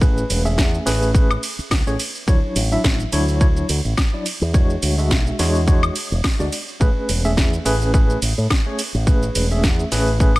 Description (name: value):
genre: nu-disco, nu disco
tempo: 106 BPM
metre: 4/4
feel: swing 56% on 16ths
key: A major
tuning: A4 = 440 Hz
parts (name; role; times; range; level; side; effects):
- tine electric piano; accompaniment; 0.0-10.4 s; F#3 to E5; -23 LUFS; equal; medium tremolo, sidechain pumping, dub echo
- fingered electric bass with an envelope filter; bass; 0.0-10.4 s; E1 to A2; -20 LUFS; equal; sidechain pumping
- electronic kick drum; drums; 0.0-10.3 s; none; -17 LUFS; equal; none
- house drum kit; drums; 0.0-10.4 s; hi-hat, ride cymbal, shaker, snare drum, woodblock; -24 LUFS; equal; none
room: little or no reverb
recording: none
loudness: -16 LUFS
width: side -19 dB against mid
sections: 0.0-10.4 A section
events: none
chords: 0.0 Amaj9; 2.3 Dmaj9; 4.3 E13; 6.8 Amaj9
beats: | 0.01 0.58 1.15 1.71 | 2.28 2.84 3.41 3.98 | 4.54 5.11 5.67 6.24 | 6.81 7.37 7.94 8.50 | 9.07 9.64 10.20